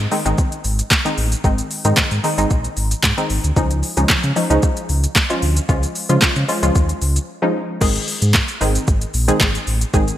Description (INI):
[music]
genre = dance-pop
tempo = 113 BPM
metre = 4/4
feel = straight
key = unclear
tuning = A4 = 440 Hz
[part]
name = wide unison pluck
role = accompaniment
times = 0.0-10.2 s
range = Eb3 to Ab4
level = -21 LUFS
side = equal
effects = wide subtle chorus
[part]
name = sub bass with octave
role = bass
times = 0.0-10.1 s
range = Ab1 to Db3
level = -19 LUFS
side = equal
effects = sidechain pumping
[part]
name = smooth R&B drum kit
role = drums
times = 0.1-10.2 s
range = crash cymbal, handclaps, hi-hat, kick drum, shaker, snare drum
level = -18 LUFS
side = equal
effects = overdrive
[sound]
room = light reverb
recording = bright 1980s-style digital production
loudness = -15 LUFS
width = side -12 dB against mid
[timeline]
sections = 0.0-7.8 A section; 7.8-10.2 B section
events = break 7.3-7.8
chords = 0.0 Ab; 3.6 Dbadd9; 7.8 Ab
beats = 0.38 0.91 | 1.44 1.97 2.50 3.04 | 3.57 4.10 4.63 5.16 | 5.69 6.22 6.75 7.28 | 7.81 8.35 8.88 9.41 | 9.94